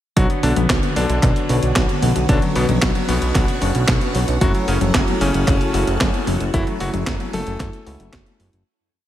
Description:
italo disco; 113 BPM; 4/4; straight; F# minor; A4 = 440 Hz
clear electric grand piano; melody; 0.2-8.6 s; B2 to A4; -24 LUFS; left 1 dB; digital delay
string machine, full ensemble; sustained chords; 0.2-8.6 s; D3 to G#5; -26 LUFS; equal; phaser, ensemble chorus
bell-like tine electric piano; stabs; 0.2-8.6 s; A3 to C#5; -26 LUFS; left 2 dB; medium stereo tremolo
fat analog bass; bass; 0.2-8.6 s; F#1 to C#2; -21 LUFS; equal
clean 12-bit digital drum machine; drums; 0.2-8.6 s; handclaps, hi-hat, snare drum, toms; -23 LUFS; left 1 dB; studio ambience, gated reverb
electronic kick drum; drums; 0.2-8.2 s; -20 LUFS; equal; studio ambience
digital ambience; -16 LUFS; side -12 dB against mid
0.2-8.7 chorus
fade-out 5.8-8.7
0.2 Bmadd9; 4.4 F#m7

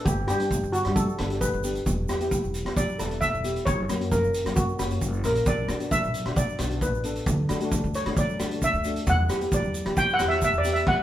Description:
calypso; 133 BPM; 4/4; straight; A4 = 440 Hz
steel pan; melody; 0.0-11.0 s; F#4 to G5; -27 LUFS; equal
steel pan; accompaniment; 0.0-10.9 s; A3 to A4; -31 LUFS; left 2 dB
upright bass; bass; 0.1-10.8 s; E1 to E3; -29 LUFS; equal
street-band drum kit; drums; 0.1-11.0 s; crash cymbal, hi-hat, kick drum, rim click; -28 LUFS; equal
egg shaker; percussion; 0.1-10.8 s; -40 LUFS; right 6 dB
wet studio reverb, RT60 0.8 s; band playing live in one room; -23 LUFS; side -12 dB against mid
0.0-11.0 A section
steel pan solo 0.0-11.0
0.1 G; 1.9 Em7; 3.7 F#; 5.5 Bm; 7.3 Dadd9; 9.1 Emadd9

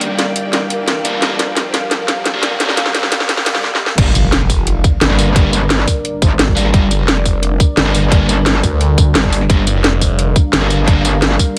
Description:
dark technical drum and bass; 174 BPM; 4/4; straight; G minor; A4 = 441 Hz
deep dark ambient pad; sustained chords; 0.0-11.6 s; G3 to F5; -25 LUFS; equal; chorus, built-in reverb, sidechain pumping
drum and bass drum kit; drums; 0.0-11.5 s; crash cymbal, hi-hat, snare drum, tambourine; -18 LUFS; equal
riser, swell and impact; sound effects; 0.0-5.4 s; -24 LUFS; equal
warm studio string section; texture; 0.0-3.6 s; G4 to G5; -29 LUFS; equal; sidechain pumping
thick fuzz guitar; stabs; 1.0-11.0 s; G3 to D4; -23 LUFS; equal; distortion, digital delay
phased detuned saw bass; bass; 4.0-10.3 s; F1 to D2; -18 LUFS; equal; phaser, overdrive, sidechain pumping
electronic kick drum; drums; 4.0-11.5 s; -15 LUFS; equal
metallic wobble bass; bass; 5.0-11.4 s; G1 to Ab1; -17 LUFS; equal; distortion, chorus
light reverb, digital ambience; high-pass filter; -14 LUFS; mono
0.0-4.0 A section; 4.0-11.6 B section
build-up 0.0-4.0; drum fill 0.0-3.6, 3.6-4.0; riser 0.0-3.6; swell 3.3-4.0; drop 4.0-11.6; impact 4.0-5.4
0.0 Gm

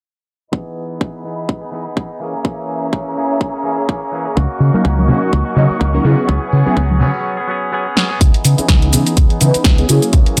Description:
filtered disco house; 125 BPM; 4/4; swing 56% on 16ths; A4 = 442 Hz
rich studio violin section; sustained chords; 0.5-7.2 s; C#4 to C#6; -25 LUFS; equal; sidechain pumping, low-pass filter
direct-recorded clean electric guitar; riff; 0.5-10.4 s; E3 to G#4; -26 LUFS; equal; spring reverb, sidechain pumping, low-pass filter
electronic kick drum; drums; 0.5-10.2 s; -16 LUFS; equal; high-pass filter on kick
fingered electric bass; bass; 4.4-10.4 s; C#2 to C#3; -16 LUFS; equal; sidechain pumping, low-pass filter
tambourine and congas; percussion; 4.4-7.2 s; -23 LUFS; equal; sidechain pumping on perc, low-pass filter on perc
funky polysynth comp; accompaniment; 4.7-10.4 s; E3 to D#5; -20 LUFS; equal; chorus, phaser, sidechain pumping, low-pass filter
house drum kit; drums; 8.0-10.4 s; cabasa, hi-hat, snare drum; -20 LUFS; equal
light reverb; -15 LUFS; mono
0.5-8.2 A section; 8.2-10.4 B section
filter sweep 0.5-8.2, 8.2-10.4; break 7.2-8.2; drum fill 8.0
0.5 Emaj7; 2.2 A#m7b5/E; 4.4 D#m7/C#; 6.3 E69/C#; 8.2 C#m9; 9.9 F#9/C#

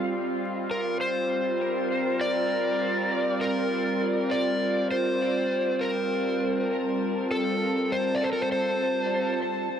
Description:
ambient; 100 BPM; 4/4; straight; G minor; A4 = 440 Hz
warbly tape-like pad; sustained chords; 0.0-9.8 s; G3 to A5; -28 LUFS; right 1 dB; chorus, built-in reverb
overdriven slide guitar; melody; 0.7-9.4 s; A4 to D5; -26 LUFS; left 1 dB; dub echo
wet echo chamber reverb, RT60 1.7 s; vinyl crackle; -24 LUFS; side -8 dB against mid
0.0-9.7 A section
0.1 Gm7; 4.9 G9sus4

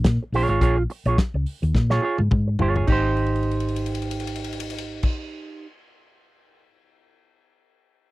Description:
disco; 105 BPM; 4/4; swing 56% on 16ths; Ab major; A4 = 440 Hz
hollow-body short-scale fingered electric bass; bass; 0.0-5.1 s; G1 to Bb2; -23 LUFS; left 1 dB
warm soul drum kit; drums; 0.0-6.6 s; crash cymbal, hi-hat, kick drum, ride cymbal, snare drum, toms; -24 LUFS; left 1 dB
electric guitar with an envelope filter; accompaniment; 0.1-5.7 s; Eb4 to Db5; -25 LUFS; right 4 dB
little or no reverb; dry, close 1970s-style studio recording; -20 LUFS; side -19 dB against mid
0.0-2.9 A section; 2.9-5.2 B section
drum fill 1.7-2.9, 3.2-5.0
0.0 Bbm7; 2.9 Abmaj7

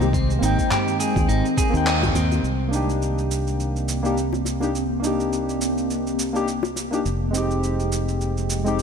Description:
sunset chillout; 104 BPM; 4/4; swing 57% on 16ths; C minor; A4 = 440 Hz
soft electric-piano-like synth keys; accompaniment; 0.0-8.8 s; Ab3 to G5; -25 LUFS; equal; chorus, auto-pan, tape echo
ethereal airy pad; sustained chords; 0.0-8.8 s; Eb3 to G4; -27 LUFS; equal; ensemble chorus, built-in reverb, phaser
clean electric guitar; arpeggios; 0.0-2.4 s; C4 to Eb5; -29 LUFS; right 1 dB; spring reverb, tape echo
fingered electric bass; bass; 0.0-8.8 s; F1 to Eb2; -24 LUFS; equal
dusty soul sampler-style drum kit; drums; 0.0-8.8 s; cabasa, handclaps, toms; -29 LUFS; right 1 dB; overdrive
bongos; percussion; 0.0-7.0 s; -31 LUFS; left 8 dB
electronic kick drum; drums; 0.1-2.1 s; -24 LUFS; equal; overdrive
light reverb; -20 LUFS; side -6 dB against mid
0.0-2.4 A section; 2.4-8.8 B section
band accent 1.9; filter sweep on ambient pad 2.4-8.8
0.0 Abmaj7; 2.4 Cm9; 7.1 Fm9

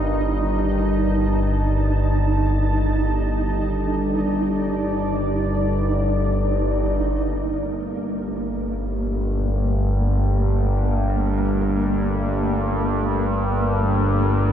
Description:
dark ambient drone; free time; G minor; A4 = 438 Hz
deep dark ambient pad; sustained chords; 0.0-14.5 s; G3 to A5; -27 LUFS; equal; chorus, built-in reverb
analog drone; drone; 0.0-14.5 s; G1 to G2; -21 LUFS; equal; chorus, phaser
flickering grainy texture; texture; 0.0-14.5 s; Bb3 to Eb4; -27 LUFS; right 2 dB; built-in reverb
moderate huge ambient reverb, RT60 7.9 s; dark, warm production; -19 LUFS; side -9 dB against mid
0.0-7.1 A section; 7.1-14.5 B section
fade-in on ambient pad 7.1-14.5
0.0 Eb/G; 7.1 Gm

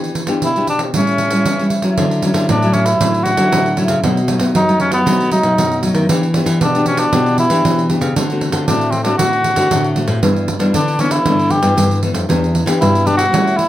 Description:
samba and choro; 116 BPM; 4/4; straight; D major; A4 = 445 Hz
nylon-string guitar; accompaniment; 0.0-13.7 s; F#2 to G4; -18 LUFS; left 1 dB
pandeiro; percussion; 0.0-13.7 s; -20 LUFS; right 3 dB
mellow cor anglais; melody; 0.4-13.7 s; B3 to G4; -16 LUFS; equal; slapback echo
nylon-string guitar; bass; 2.0-13.7 s; E2 to B3; -18 LUFS; equal
moderate small room reverb, RT60 0.6 s; close, detailed microphones; -12 LUFS; side -13 dB against mid
0.0-2.0 A section; 2.0-13.7 B section
0.0 Em7; 0.9 A7; 2.0 Dmaj9; 4.0 B7; 6.1 Em7; 8.2 D7; 10.2 G6; 12.3 Em7

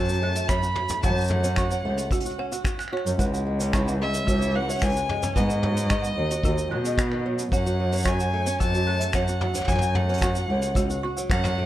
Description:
folktronica; 111 BPM; 4/4; straight; F# dorian; A4 = 435 Hz
rich violin; melody; 0.0-11.7 s; D#5 to B5; -30 LUFS; equal; digital delay
folk marimba with medium hard mallets; second line; 0.0-11.7 s; F#4 to F#6; -34 LUFS; right 4 dB; digital delay
fingerpicked swing-style acoustic guitar; arpeggios; 0.0-11.7 s; D#3 to C#5; -32 LUFS; left 1 dB; digital delay
dark cello; bass; 0.0-11.7 s; C#2 to B2; -25 LUFS; equal
vintage brush drum kit; drums; 0.0-11.6 s; finger snaps, hi-hat, shaker, toms; -32 LUFS; equal
kick drum; drums; 0.5-11.4 s; -27 LUFS; equal
small room ambience; dark, warm production; -22 LUFS; side -13 dB against mid
0.0-11.7 A section
band accent 11.3
0.0 F#m; 3.2 C#m; 5.4 G#m7; 7.5 F#m

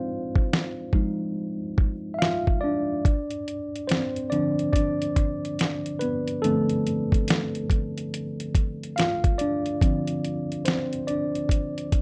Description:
lo-fi hip hop; 71 BPM; 4/4; swing 62% on 16ths; D dorian; A4 = 438 Hz
mellow tine electric piano; accompaniment; 0.0-12.0 s; D3 to F5; -28 LUFS; equal; cassette tape, low-pass filter
dusty soul sampler-style drum kit; drums; 0.4-12.0 s; hi-hat, kick drum, snare drum; -26 LUFS; equal; vintage 12-bit sampler grit
light reverb; -26 LUFS; mono
0.0-12.0 A section
break 0.0-3.1; tine electric piano solo 0.0-12.0
0.0 Fm7; 3.1 Dm7

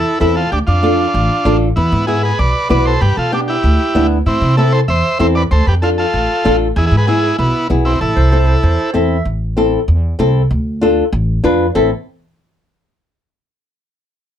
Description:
latin; 192 BPM; 4/4; straight; A minor; A4 = 440 Hz
overdriven combo organ; melody; 0.0-8.9 s; B3 to E5; -16 LUFS; right 1 dB
flamenco guitar; accompaniment; 0.2-11.9 s; B3 to B4; -15 LUFS; left 2 dB
upright bass; bass; 0.2-11.9 s; A1 to C3; -15 LUFS; equal
mellow clarinet; second line; 8.2-9.3, 11.8-11.9 s; C5 to E5; -23 LUFS; right 6 dB
light reverb; dark, warm production; -12 LUFS; side -10 dB against mid
0.0-9.3 A section; 9.3-11.7 B section; 11.7-13.0 C section
0.0 Am; 0.5 Dm; 1.8 E7; 3.0 G; 4.3 Am; 5.5 Dm; 6.8 E; 8.0 Am; 10.5 Dm; 11.7 Am

